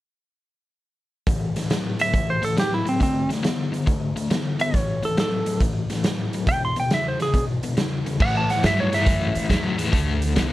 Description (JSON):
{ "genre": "electric blues shuffle", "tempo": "139 BPM", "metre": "4/4", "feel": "swing 67% on 8ths", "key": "A mixolydian", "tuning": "A4 = 440 Hz", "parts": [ { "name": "crunchy overdriven guitar", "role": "riff", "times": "1.3-10.5 s", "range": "E2 to B3", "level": "-25 LUFS", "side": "left 3 dB", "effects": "tremolo" }, { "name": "raw garage drum kit", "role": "drums", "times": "1.3-10.5 s", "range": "crash cymbal, hi-hat, kick drum, snare drum", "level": "-24 LUFS", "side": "right 1 dB", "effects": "none" }, { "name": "clean lap steel guitar", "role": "melody", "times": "2.0-9.8 s", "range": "C4 to C6", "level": "-24 LUFS", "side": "right 1 dB", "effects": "none" }, { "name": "upright bass", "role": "bass", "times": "8.2-10.5 s", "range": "C2 to A2", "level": "-25 LUFS", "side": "right 1 dB", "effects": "none" } ], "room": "light reverb", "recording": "none", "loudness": "-20 LUFS", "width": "side -16 dB against mid", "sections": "1.3-8.2 A section; 8.2-10.5 B section", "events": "none", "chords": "1.3 A5; 3.0 D5; 4.7 A5; 6.5 E5; 8.2 A5; 9.9 D5" }